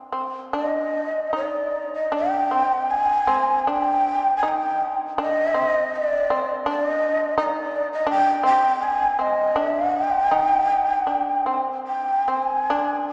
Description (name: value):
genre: japanese traditional, Japanese chamber music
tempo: 68-86 BPM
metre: 4/4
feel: rubato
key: G miyako bushi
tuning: A4 = 440 Hz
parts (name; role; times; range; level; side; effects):
- shamisen; second line; 0.0-13.1 s; C4 to Eb4; -29 LUFS; equal; none
- breathy mellow shakuhachi; melody; 0.6-13.1 s; D5 to Ab5; -23 LUFS; equal; none
room: wet cathedral reverb, RT60 4.1 s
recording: none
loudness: -22 LUFS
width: mono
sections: 0.6-12.7 A section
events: none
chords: none